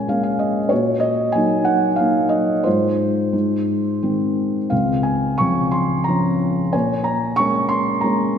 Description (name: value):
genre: classical, lyrical solo piano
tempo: 90 BPM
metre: 3/4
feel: uneven beats, rubato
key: Db major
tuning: A4 = 440 Hz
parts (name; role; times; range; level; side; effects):
- felt-muted upright piano; solo; 0.0-8.4 s; Db2 to Db6; -17 LUFS; equal; none
room: wet concert hall reverb, RT60 2.0 s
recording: recorded in a church or concert hall, faint mains hum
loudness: -17 LUFS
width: side -8 dB against mid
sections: 0.0-8.4 A section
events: felt piano fill 0.0-0.7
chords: 0.0 Bbm7; 0.7 Ebm/Bb; 2.7 Ab6; 3.3 Ab; 4.7 Dbmaj7; 6.7 Bbm7